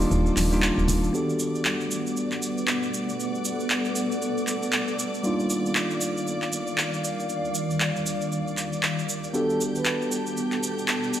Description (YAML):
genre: deep house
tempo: 117 BPM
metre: 4/4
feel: swing 60% on 16ths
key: G major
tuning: A4 = 440 Hz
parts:
  - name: bell-like tine electric piano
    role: stabs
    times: 0.0-11.2 s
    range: G3 to A4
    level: -28 LUFS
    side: equal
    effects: low-pass filter, tape echo
  - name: woody FM bass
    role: bass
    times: 0.0-1.1 s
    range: Eb1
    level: -24 LUFS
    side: equal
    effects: none
  - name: cabasa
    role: percussion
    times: 0.0-11.2 s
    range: none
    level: -34 LUFS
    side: right 3 dB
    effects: none
  - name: granular cloud pad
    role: texture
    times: 0.0-11.2 s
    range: Eb3 to D6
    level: -31 LUFS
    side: left 1 dB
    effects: built-in reverb
  - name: rich studio violin section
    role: texture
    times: 0.0-11.2 s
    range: G4 to G6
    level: -36 LUFS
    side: equal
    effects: none
  - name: deep house drum kit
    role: drums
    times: 0.4-11.0 s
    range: handclaps, hi-hat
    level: -28 LUFS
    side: equal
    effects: none
  - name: congas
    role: percussion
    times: 0.4-1.0 s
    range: none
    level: -33 LUFS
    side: left 1 dB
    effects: none
  - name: airy breathy pad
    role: sustained chords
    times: 1.1-11.2 s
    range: Eb3 to A5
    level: -33 LUFS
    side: right 1 dB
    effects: chorus
  - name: mellow horn-like synth lead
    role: melody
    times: 9.3-10.1 s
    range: A4 to B4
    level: -32 LUFS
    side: right 2 dB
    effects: chorus, analog delay
room: moderate lush hall reverb, RT60 1.6 s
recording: dry, gritty hardware recording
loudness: -23 LUFS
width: side -11 dB against mid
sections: 0.0-1.1 A section; 1.1-11.2 B section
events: filter sweep on analog synth pad 1.1-11.2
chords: 0.0 Ebmaj9; 1.1 Gmaj9; 5.2 Ebmaj9; 9.3 Gmaj9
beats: 0.12 0.63 | 1.14 1.65 2.17 2.68 | 3.19 3.71 4.22 4.73 | 5.24 5.76 6.27 6.78 | 7.29 7.81 8.32 8.83 | 9.35 9.86 10.37 10.88